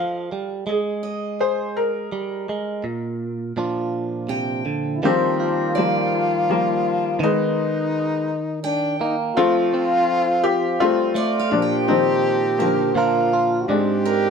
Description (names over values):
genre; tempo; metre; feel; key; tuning
acoustic folk-pop ballad; 83 BPM; 3/4; straight; Eb major; A4 = 440 Hz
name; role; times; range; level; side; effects
felt-muted upright piano; melody; 0.0-14.3 s; D3 to F5; -22 LUFS; left 4 dB; none
direct-recorded clean electric guitar; accompaniment; 0.0-14.3 s; Ab2 to Bb4; -25 LUFS; right 3 dB; none
picked steel-string acoustic guitar; arpeggios; 1.0-14.3 s; Bb4 to G5; -28 LUFS; right 6 dB; none
clear French horn; second line; 4.9-14.3 s; D4 to G4; -22 LUFS; equal; none
room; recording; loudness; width
moderate stone room reverb, RT60 1.2 s; band playing live in one room; -19 LUFS; side -6 dB against mid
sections
0.0-5.0 A section; 5.0-14.3 B section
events
none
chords
0.0 Fadd9; 0.7 Absus2; 2.8 Bbsus4; 3.6 Bb; 5.0 Ebadd9; 7.2 Abmadd9/Eb; 9.4 F; 11.5 Bbsus4; 13.0 Bb; 13.7 Ab